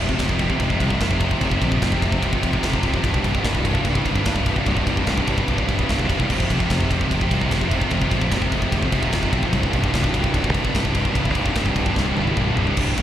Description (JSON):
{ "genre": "heavy metal", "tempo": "148 BPM", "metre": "4/4", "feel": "straight", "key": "C minor", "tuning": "A4 = 440 Hz", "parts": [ { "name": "heavy high-gain guitar", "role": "riff", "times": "0.0-13.0 s", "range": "C2 to C3", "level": "-25 LUFS", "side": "left 9 dB", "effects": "distortion, slapback echo" }, { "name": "heavy high-gain guitar", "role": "riff", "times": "0.0-13.0 s", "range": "C2 to C3", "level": "-25 LUFS", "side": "right 8 dB", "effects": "distortion" }, { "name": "sludgy distorted guitar", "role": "riff", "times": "0.0-13.0 s", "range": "C2 to F4", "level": "-27 LUFS", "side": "equal", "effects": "overdrive" }, { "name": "fuzz fingered electric bass", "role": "bass", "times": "0.0-13.0 s", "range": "C1 to C2", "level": "-24 LUFS", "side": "equal", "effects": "overdrive" }, { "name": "tight metal drum kit", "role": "drums", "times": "0.1-13.0 s", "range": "crash cymbal, kick drum, ride cymbal, snare drum, toms", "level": "-24 LUFS", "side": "equal", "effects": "none" } ], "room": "little or no reverb", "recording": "live gig heard through the venue's PA, recital hall reverb", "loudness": "-18 LUFS", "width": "side -11 dB against mid", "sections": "0.0-12.8 A section", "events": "drum fill 12.0-12.8", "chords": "0.0 Fm; 3.0 Cm; 6.3 Fm; 9.5 Cm" }